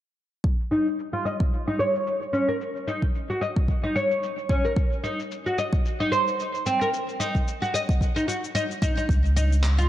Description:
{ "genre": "organic downtempo", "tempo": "111 BPM", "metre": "4/4", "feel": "swing 56% on 16ths", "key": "unclear", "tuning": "A4 = 440 Hz", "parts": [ { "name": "electronic kick drum", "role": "drums", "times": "0.4-9.2 s", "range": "none", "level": "-23 LUFS", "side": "equal", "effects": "none" }, { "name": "electronic shaker and handclaps", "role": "drums", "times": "0.4-9.9 s", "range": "none", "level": "-37 LUFS", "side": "left 3 dB", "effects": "overdrive, low-pass filter on perc, low-pass filter on snare, low-pass filter on room" }, { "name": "oud", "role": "arpeggios", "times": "0.7-9.9 s", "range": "C4 to Eb5", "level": "-25 LUFS", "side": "equal", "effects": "low-pass filter, digital delay" }, { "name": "warm sub bass", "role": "bass", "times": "9.1-9.9 s", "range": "Db2", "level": "-19 LUFS", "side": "equal", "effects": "sidechain pumping" } ], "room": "moderate lush hall reverb, RT60 2.1 s", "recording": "dark, warm production", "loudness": "-22 LUFS", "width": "side -13 dB against mid", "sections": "0.4-9.9 A section", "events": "filter sweep on drum 0.4-9.9; filter sweep on oud 0.4-9.9", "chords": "0.4 N.C.; 2.6 Eb7(no3); 4.8 Cdim; 9.1 Db" }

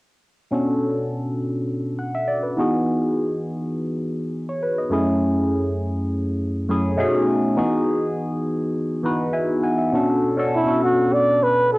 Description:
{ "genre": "soul", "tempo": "102 BPM", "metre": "4/4", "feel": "straight", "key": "unclear", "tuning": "A4 = 436 Hz", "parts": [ { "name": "barky tine electric piano", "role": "accompaniment", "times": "0.5-11.8 s", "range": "F#2 to G#5", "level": "-20 LUFS", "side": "equal", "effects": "overdrive, phaser" }, { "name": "breathy flugelhorn", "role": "melody", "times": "10.6-11.8 s", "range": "E4 to D5", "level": "-17 LUFS", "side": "equal", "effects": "none" } ], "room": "moderate spring reverb, RT60 1.6 s, small room ambience", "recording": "home recording on cassette", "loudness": "-19 LUFS", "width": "side -21 dB against mid", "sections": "0.5-9.9 A section; 9.9-11.8 B section", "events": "tine electric piano fill 9.1-9.9", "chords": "0.5 Bm9; 2.6 Emaj7; 4.9 F#m9; 7.0 B13; 7.6 Emaj7; 9.9 Bm9" }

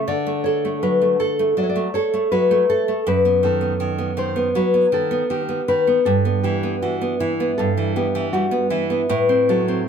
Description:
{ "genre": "romantic duo for nylon-string guitar and classical guitar", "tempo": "80 BPM", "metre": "4/4", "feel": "rubato", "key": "E minor from 3.1 s", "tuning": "A4 = 440 Hz", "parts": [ { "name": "nylon-string guitar", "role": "melody", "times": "0.0-9.9 s", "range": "E4 to D5", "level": "-20 LUFS", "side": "left 5 dB", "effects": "none" }, { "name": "nylon-string guitar", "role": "accompaniment", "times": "0.0-9.9 s", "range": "F#2 to A4", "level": "-20 LUFS", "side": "right 3 dB", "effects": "none" } ], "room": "light reverb", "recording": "none", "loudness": "-17 LUFS", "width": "side -7 dB against mid", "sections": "0.0-9.9 A section", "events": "none", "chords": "0.1 D; 3.1 B7/F#; 6.1 Em/G; 9.1 F#dim/A" }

